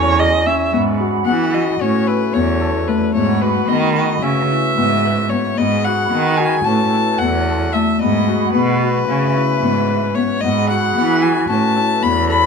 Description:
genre	contemporary instrumental, chamber music in an uneven meter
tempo	223 BPM (eighths)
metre	9/8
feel	straight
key	G# phrygian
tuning	A4 = 440 Hz
part	warm violin	melody	0.0-12.5 s	B4 to B5	-20 LUFS	left 4 dB	none
part	rich viola	second line	0.0-0.7 s	C#5 to E5	-16 LUFS	right 4 dB	none
part	bright large flute ensemble	sustained chords	0.0-12.5 s	C#4 to B5	-24 LUFS	right 4 dB	none
part	Celtic harp	arpeggios	0.0-12.5 s	A3 to B4	-19 LUFS	left 7 dB	none
part	rich cello	bass	0.0-12.5 s	E2 to E3	-19 LUFS	right 4 dB	none
part	glockenspiel with hard plastic mallets	texture	11.0-11.8 s	F#6 to B6	-31 LUFS	left 1 dB	none
room	moderate studio reverb, RT60 0.8 s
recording	minimal, uncompressed stereo recording, faint mains hum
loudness	-14 LUFS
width	side -5 dB against mid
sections	0.7-12.5 A section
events	none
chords	0.0 Amaj7; 0.7 G#m7; 1.8 Aadd9; 3.2 G#m7; 4.2 C#m7; 5.6 G#m7; 6.7 Aadd9; 8.0 G#m7; 11.5 Aadd9

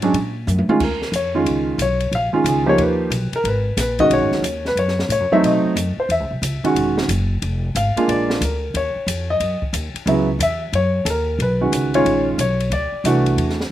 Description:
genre	jazz piano trio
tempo	181 BPM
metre	4/4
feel	swing 65% on 8ths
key	Eb minor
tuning	A4 = 438 Hz
part	clear concert grand piano	melody	0.0-13.6 s	Db3 to F5	-18 LUFS	equal	slapback echo
part	upright bass	bass	0.0-13.7 s	E1 to B2	-22 LUFS	equal	none
part	open jazz drum kit	drums	0.0-13.7 s	crash cymbal, hi-hat, kick drum, ride cymbal, snare drum, toms	-27 LUFS	left 1 dB	none
room	little or no reverb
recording	recorded outdoors, with no room sound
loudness	-17 LUFS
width	side -12 dB against mid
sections	0.8-11.4 A section; 11.4-13.7 A section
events	drum fill 0.5-0.8; grand piano solo 0.8-13.7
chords	0.1 N.C.; 0.8 Ebsus2; 2.1 Bbm7; 2.8 Eb; 3.4 Abm7; 4.8 Gbm7; 5.4 B7b9; 6.1 E69; 7.4 Fm; 8.1 Bb7; 8.7 Ebm9; 10.1 Dbm7; 10.7 Gb6; 11.4 Bmaj9#11; 12.7 D9

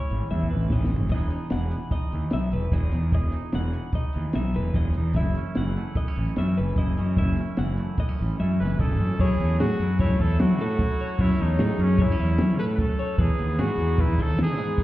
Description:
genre	math rock and midwest emo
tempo	149 BPM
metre	5/4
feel	straight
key	E major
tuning	A4 = 437 Hz
part	twangy electric guitar	accompaniment	0.0-14.8 s	E2 to G#4	-32 LUFS	right 4 dB	none
part	twelve-string electric guitar	arpeggios	0.0-14.8 s	G#4 to F#5	-34 LUFS	left 4 dB	wide subtle chorus, plate reverb
part	fuzz fingered electric bass	bass	0.1-14.8 s	E1 to F#3	-24 LUFS	equal	overdrive
part	compact cocktail drum kit	drums	0.1-14.8 s	crash cymbal, hi-hat, kick drum, snare drum, toms	-26 LUFS	equal	none
part	bright trumpet	melody	8.6-14.8 s	C#4 to B4	-32 LUFS	right 1 dB	plate reverb
room	light reverb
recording	heard muffled through a wall, stone room reverb, EQ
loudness	-22 LUFS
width	side -16 dB against mid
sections	0.0-9.2 A section; 9.2-14.8 B section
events	drum fill 0.3-1.1, 8.4-9.2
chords	0.0 Amaj9; 1.1 Emaj9; 5.2 B9sus4/F#; 9.2 F#m9; 13.2 Emaj7

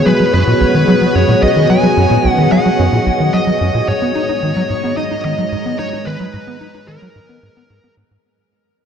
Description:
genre	ambient, sequencer-driven space music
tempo	110 BPM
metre	4/4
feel	straight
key	unclear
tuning	A4 = 440 Hz
part	high-gain lead guitar	melody	0.0-7.9 s	Bb4 to G#5	-18 LUFS	equal	distortion, ping-pong delay
part	string machine, full ensemble	sustained chords	0.0-8.2 s	Ab3 to Bb5	-16 LUFS	equal	ensemble chorus
part	tight sequencer bass	riff	0.0-8.2 s	B1 to Eb4	-15 LUFS	equal	wide subtle chorus, ping-pong delay
room	wet huge ambient reverb, RT60 7.7 s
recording	dark, warm production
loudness	-11 LUFS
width	side -7 dB against mid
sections	0.0-8.2 A section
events	fade-out 2.4-8.2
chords	0.0 B6; 3.9 Abmadd9

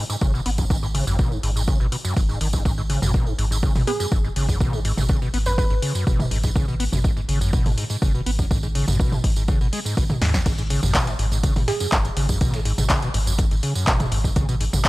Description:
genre	acid house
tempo	123 BPM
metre	4/4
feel	straight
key	G# minor pentatonic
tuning	A4 = 440 Hz
part	overdriven acid bass	riff	0.0-14.9 s	F#2 to B3	-25 LUFS	equal	distortion, analog chorus, sidechain pumping
part	tambourine	percussion	0.1-14.9 s	none	-34 LUFS	right 4 dB	none
part	warm sub bass	bass	0.2-14.9 s	F#1 to D#2	-25 LUFS	equal	sidechain pumping
part	electronic kick drum	drums	0.2-14.9 s	none	-22 LUFS	equal	none
part	punchy analog drum machine	drums	0.5-14.9 s	crash cymbal, handclaps, hi-hat, snare drum, toms	-26 LUFS	equal	none
part	hollow square pluck	melody	3.9-5.7, 11.7-12.4 s	G#4 to B4	-29 LUFS	right 2 dB	chorus, analog delay
part	dusty soul sampler-style drum kit	drums	10.5-14.9 s	hi-hat, snare drum	-38 LUFS	equal	none
room	little or no reverb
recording	dry, gritty hardware recording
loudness	-19 LUFS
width	side -19 dB against mid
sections	0.0-14.9 A section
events	drum fill 10.2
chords	0.0 G#m7

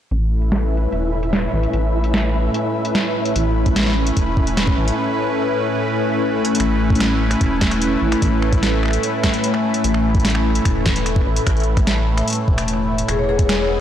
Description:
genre	IDM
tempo	148 BPM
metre	4/4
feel	straight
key	A major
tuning	A4 = 440 Hz
part	phased analog pad	sustained chords	0.1-13.8 s	A2 to G#5	-20 LUFS	equal	phaser, chorus, tremolo
part	rubbery square bass	bass	0.1-13.8 s	E1 to A1	-20 LUFS	equal	tube saturation
part	booming analog drum machine	drums	0.1-13.6 s	finger snaps, hi-hat, snare drum	-23 LUFS	equal	low-pass filter on hats, low-pass filter on snare, tape echo
part	flickering grainy texture	texture	0.5-5.0, 13.7-13.8 s	B3 to E5	-28 LUFS	left 1 dB	built-in reverb
part	electronic kick drum	drums	3.7-13.5 s	none	-18 LUFS	equal	none
part	vibraphone with medium hard mallets	arpeggios	13.1-13.8 s	G#4 to C#5	-19 LUFS	left 6 dB	tape echo
room	moderate lush hall reverb, RT60 1.9 s, digital ambience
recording	blown-out, overdriven recording, overdrive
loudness	-16 LUFS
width	side -10 dB against mid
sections	0.1-6.6 A section; 6.6-13.8 B section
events	filter sweep on drum 0.1-6.6; filter sweep on analog synth bass 0.1-6.6; drum fill 6.4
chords	0.1 Aadd9; 13.1 Emaj7

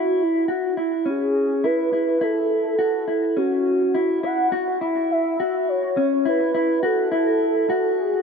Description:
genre	dream pop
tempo	104 BPM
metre	4/4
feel	straight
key	F# minor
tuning	A4 = 440 Hz
part	warm velvety synth lead	melody	0.0-8.2 s	E4 to F#5	-22 LUFS	right 2 dB	chorus, tape echo
part	mellow electric guitar	arpeggios	0.0-8.2 s	C#4 to F#4	-22 LUFS	left 2 dB	lush chorus, tape echo
room	moderate lush hall reverb, RT60 2.7 s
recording	rough home demo mix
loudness	-19 LUFS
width	side -5 dB against mid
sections	0.0-4.5 A section; 4.5-8.2 B section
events	none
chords	0.0 F#7(no3); 2.2 Esus24; 3.4 F#5; 4.5 N.C.

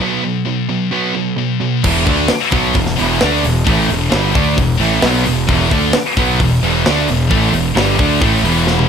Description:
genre	hard rock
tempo	132 BPM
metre	4/4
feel	straight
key	E minor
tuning	A4 = 440 Hz
part	overdriven semi-hollow guitar	riff	0.0-8.9 s	E2 to D4	-18 LUFS	right 9 dB	none
part	scooped high-gain guitar	riff	0.0-8.9 s	E2 to D4	-18 LUFS	left 13 dB	distortion
part	high-gain distorted guitar	riff	1.8-8.9 s	E2 to D4	-20 LUFS	equal	distortion
part	fuzz fingered electric bass	bass	1.8-8.9 s	E1 to D2	-18 LUFS	left 1 dB	overdrive
part	tight metal drum kit	drums	1.8-8.9 s	crash cymbal, hi-hat, kick drum, snare drum, toms	-18 LUFS	equal	none
room	light reverb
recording	none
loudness	-12 LUFS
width	side -7 dB against mid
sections	0.0-1.8 A section; 1.8-8.9 B section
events	break 0.0-1.8; drum fill 8.7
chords	0.0 B5; 1.8 Em

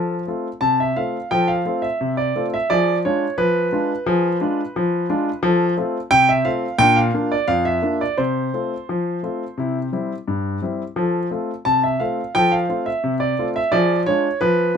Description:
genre	ragtime piano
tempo	87 BPM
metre	2/4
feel	straight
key	F major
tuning	A4 = 440 Hz
part	clear grand piano	solo	0.0-14.8 s	F2 to A5	-18 LUFS	equal	none
room	light reverb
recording	none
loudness	-18 LUFS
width	side -7 dB against mid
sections	0.0-14.8 A section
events	none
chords	0.0 F; 2.7 Fdim7; 5.4 F; 6.8 Bb; 8.2 F/C; 9.6 C; 11.0 F; 13.7 Fdim7

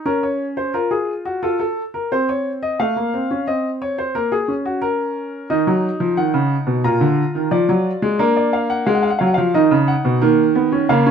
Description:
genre	classical, baroque-style 3-part fugue for grand piano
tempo	88 BPM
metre	4/4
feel	straight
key	Eb minor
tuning	A4 = 442 Hz
part	warm baby grand piano	solo	0.0-11.1 s	Bb2 to Bb5	-16 LUFS	equal	none
room	light reverb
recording	close, detailed microphones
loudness	-16 LUFS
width	side -7 dB against mid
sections	0.0-11.1 A section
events	none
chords	0.1 Bbm/Db; 1.4 F; 2.8 F7/A; 4.2 Bbm; 5.5 Ebm; 6.8 Bb; 8.2 Bb7; 9.5 Ebm

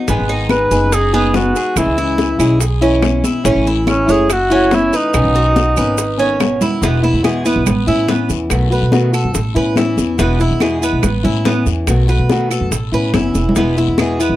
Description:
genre	latin, Cuban son and guajira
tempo	142 BPM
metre	4/4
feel	straight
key	E major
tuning	A4 = 438 Hz
part	nylon-string guitar	accompaniment	0.0-14.4 s	B2 to G#4	-18 LUFS	left 2 dB	none
part	Cuban tres	arpeggios	0.0-14.4 s	B3 to C#5	-21 LUFS	right 4 dB	none
part	upright bass	bass	0.1-14.4 s	E1 to B2	-17 LUFS	right 1 dB	none
part	bongos	percussion	0.1-14.2 s	none	-23 LUFS	left 7 dB	none
part	congas	percussion	0.1-14.2 s	none	-20 LUFS	left 1 dB	none
part	guiro	percussion	0.1-14.4 s	none	-31 LUFS	left 25 dB	none
part	maracas	percussion	0.1-14.4 s	none	-28 LUFS	right 26 dB	none
part	dark cor anglais	melody	0.5-6.4 s	C#4 to B4	-16 LUFS	equal	none
part	claves	percussion	0.5-14.2 s	none	-26 LUFS	right 24 dB	none
room	little or no reverb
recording	dry, close 1970s-style studio recording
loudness	-12 LUFS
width	side -14 dB against mid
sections	0.0-6.8 A section; 6.8-14.4 B section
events	drum fill 6.4-6.8, 13.4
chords	0.1 G#m; 1.8 C#m; 3.5 A; 5.1 Badd9; 6.8 E; 7.7 Aadd9; 8.5 B7; 9.3 Aadd9; 10.2 E; 11.0 Aadd9; 11.9 B7; 12.7 Aadd9; 13.6 E

